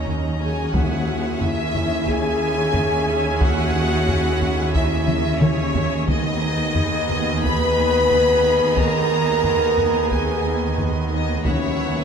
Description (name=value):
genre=cinematic, epic orchestral film score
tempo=90 BPM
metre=4/4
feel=straight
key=unclear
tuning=A4 = 441 Hz
part: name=warm symphonic violin section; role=melody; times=0.0-12.0 s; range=Db5 to Cb6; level=-26 LUFS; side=left 2 dB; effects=none
part: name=rich studio violin section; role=second line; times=0.0-12.0 s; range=Eb5 to Bb5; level=-31 LUFS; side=left 1 dB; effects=none
part: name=warm symphonic viola section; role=accompaniment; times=0.0-12.0 s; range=Cb4 to B4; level=-30 LUFS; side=equal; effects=none
part: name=clear trombone section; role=sustained chords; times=0.0-12.0 s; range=Eb3 to E4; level=-29 LUFS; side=right 3 dB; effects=none
part: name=dark French horn section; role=sustained chords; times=0.0-12.0 s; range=Db4 to Cb5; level=-23 LUFS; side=left 2 dB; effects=none
part: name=rich symphonic double bass section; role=bass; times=0.0-12.0 s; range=Eb2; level=-26 LUFS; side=right 3 dB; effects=none
part: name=warm symphonic cello section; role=bass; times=0.0-12.0 s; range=Eb2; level=-27 LUFS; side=right 2 dB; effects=none
part: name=taiko ensemble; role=drums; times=0.1-12.0 s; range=none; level=-24 LUFS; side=equal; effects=none
part: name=timpani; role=percussion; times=0.7-1.7, 6.1-7.0, 11.4-12.0 s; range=Eb3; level=-29 LUFS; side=left 2 dB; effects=none
room=wet scoring stage reverb, RT60 1.5 s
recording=none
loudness=-17 LUFS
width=side -6 dB against mid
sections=0.0-12.0 A section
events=drum fill 5.1-6.1; timpani fill 11.4-12.0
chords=0.0 Ebm7; 0.7 Dbm/Eb; 6.1 Abm/Eb; 11.4 Esus2/Eb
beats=0.07 | 0.74 1.41 2.07 2.74 | 3.40 4.07 4.74 5.41 | 6.07 6.75 7.43 8.10 | 8.77 9.44 10.11 10.78 | 11.45